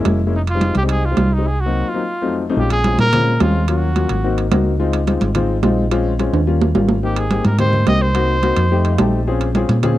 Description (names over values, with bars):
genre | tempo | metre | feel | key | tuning
Afro-Cuban jazz | 215 BPM | 4/4 | straight | F minor | A4 = 440 Hz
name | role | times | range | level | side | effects
warm concert grand piano | accompaniment | 0.0-10.0 s | F2 to A5 | -20 LUFS | left 4 dB | none
hollow-body short-scale fingered electric bass | bass | 0.0-10.0 s | F1 to Bb2 | -18 LUFS | right 1 dB | none
congas | percussion | 0.1-10.0 s | none | -22 LUFS | right 1 dB | none
timbales | percussion | 0.1-10.0 s | none | -23 LUFS | right 6 dB | none
breathy trumpet | melody | 0.4-4.5, 7.0-9.1 s | Eb4 to Eb5 | -21 LUFS | right 1 dB | none
room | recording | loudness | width
little or no reverb | dry, close 1970s-style studio recording | -14 LUFS | side -14 dB against mid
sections
0.0-2.6 A section; 2.6-10.0 B section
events
break 1.5-2.6; drum fill 6.3-7.0; grand piano fill 8.7-9.3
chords
0.3 Fm9; 1.5 Cm7b5; 2.0 F7b9; 2.6 Bbm9; 3.7 Ebm7; 4.2 Ab7; 4.8 Dbmaj7; 5.9 Bbm7; 6.5 Eb7; 7.0 Abmaj7; 8.1 Cm7b5; 8.7 F7; 9.3 Bbm7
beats
0.06 | 0.34 0.61 0.90 1.17 | 1.45 1.73 2.01 2.29 | 2.57 2.85 3.13 3.40 | 3.68 3.96 4.24 4.52 | 4.80 5.08 5.36 5.63 | 5.91 6.19 6.47 6.75 | 7.03 7.31 7.59 7.87 | 8.15 8.43 8.71 8.99 | 9.27 9.55 9.83